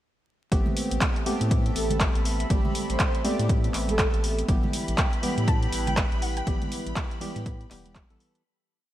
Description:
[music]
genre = deep house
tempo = 121 BPM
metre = 4/4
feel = swing 60% on 16ths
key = A minor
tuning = A4 = 439 Hz
[part]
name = percussive organ stab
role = stabs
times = 0.5-8.4 s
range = E3 to A4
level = -31 LUFS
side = equal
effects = analog chorus, sidechain pumping, ping-pong delay
[part]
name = round analog bass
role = bass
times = 0.5-8.2 s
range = E1 to A2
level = -29 LUFS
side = equal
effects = tube saturation, sidechain pumping
[part]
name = deep house drum kit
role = drums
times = 0.5-8.4 s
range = handclaps, hi-hat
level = -31 LUFS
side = equal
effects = overdrive
[part]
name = electronic kick drum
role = drums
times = 0.5-8.1 s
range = none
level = -25 LUFS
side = equal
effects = overdrive
[part]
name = warbly tape-like pad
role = texture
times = 1.2-8.5 s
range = E4 to B5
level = -38 LUFS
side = equal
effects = chorus, built-in reverb, sidechain pumping
[part]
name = congas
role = percussion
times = 0.7-7.9 s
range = none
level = -36 LUFS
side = right 3 dB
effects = none
[part]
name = breathy flute-like synth lead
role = melody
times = 1.8-4.4 s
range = A4 to D5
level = -33 LUFS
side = right 2 dB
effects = ensemble chorus, ping-pong delay
[part]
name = soft string machine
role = texture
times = 4.5-8.5 s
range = B5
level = -39 LUFS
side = equal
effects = ensemble chorus, sidechain pumping
[part]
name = soft round pluck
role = melody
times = 5.0-7.8 s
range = F#5 to A5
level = -36 LUFS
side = equal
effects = ensemble chorus, ping-pong delay
[sound]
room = light reverb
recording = bright 1980s-style digital production, vinyl crackle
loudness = -23 LUFS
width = side -13 dB against mid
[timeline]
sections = 0.5-8.5 drop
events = drop 0.5-8.5; fade-out 5.8-8.5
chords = 0.5 Am9; 4.5 Em/A

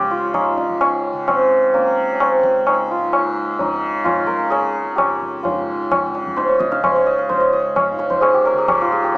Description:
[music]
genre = indian classical, Hindustani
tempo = 130 BPM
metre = 4/4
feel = straight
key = Db raga yaman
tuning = A4 = 440 Hz
[part]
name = santur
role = melody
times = 0.0-9.2 s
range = Bb3 to F5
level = -17 LUFS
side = equal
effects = none
[part]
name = tanpura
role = drone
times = 0.0-9.2 s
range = Db2 to Db3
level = -25 LUFS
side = equal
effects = none
[part]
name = tabla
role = percussion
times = 0.3-9.2 s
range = none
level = -20 LUFS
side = left 1 dB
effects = none
[sound]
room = moderate recital hall reverb, RT60 1.4 s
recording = small speaker sound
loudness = -15 LUFS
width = side -25 dB against mid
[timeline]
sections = 0.0-9.2 A section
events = none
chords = none

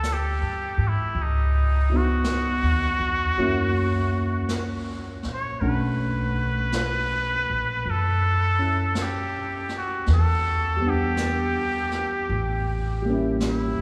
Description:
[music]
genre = jazz ballad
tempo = 54 BPM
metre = 4/4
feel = swing 68% on 8ths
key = unclear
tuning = A4 = 440 Hz
[part]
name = trumpet with straight mute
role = melody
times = 0.0-13.8 s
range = D#4 to C#5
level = -29 LUFS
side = equal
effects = none
[part]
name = dark grand piano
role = accompaniment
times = 0.0-13.8 s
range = E3 to F#5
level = -31 LUFS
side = equal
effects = none
[part]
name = upright bass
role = bass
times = 0.0-13.8 s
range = A1 to G#2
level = -27 LUFS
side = equal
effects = none
[part]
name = jazz brush drum kit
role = drums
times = 0.0-13.8 s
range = brushed snare drum, hi-hat, snare drum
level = -39 LUFS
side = equal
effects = none
[sound]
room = wet cathedral reverb, RT60 5.5 s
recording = recorded in a church or concert hall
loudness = -24 LUFS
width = mono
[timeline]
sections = 0.0-13.8 A section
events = none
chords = 0.0 G6; 1.1 C#m11; 3.4 F#7; 5.6 Bm9; 10.1 Em7; 12.3 A7b9

